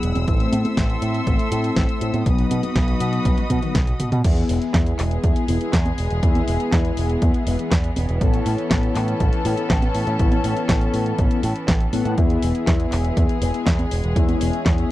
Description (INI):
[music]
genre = italo disco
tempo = 121 BPM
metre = 4/4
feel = straight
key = E major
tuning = A4 = 440 Hz
[part]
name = warm studio string section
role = sustained chords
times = 0.0-14.9 s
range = E3 to E6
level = -28 LUFS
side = left 1 dB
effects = none
[part]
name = mellow synth brass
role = stabs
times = 0.0-14.9 s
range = F#3 to F#5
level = -25 LUFS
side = left 3 dB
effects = chorus, tape echo
[part]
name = picked electric bass with an envelope filter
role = bass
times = 0.0-14.8 s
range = E1 to B2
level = -23 LUFS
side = equal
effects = tube saturation
[part]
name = house drum kit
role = drums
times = 0.0-14.9 s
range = congas, crash cymbal, handclaps, hi-hat, snare drum, toms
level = -25 LUFS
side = right 1 dB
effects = none
[part]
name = electronic kick drum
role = drums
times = 0.3-14.8 s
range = none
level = -21 LUFS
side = equal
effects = none
[sound]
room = little or no reverb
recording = dry, close 1970s-style studio recording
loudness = -18 LUFS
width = side -15 dB against mid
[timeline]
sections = 0.0-4.2 A section; 4.2-14.9 B section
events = drum fill 3.3-4.2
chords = 0.3 Am; 2.3 B; 4.2 E; 8.2 Aadd9; 12.2 E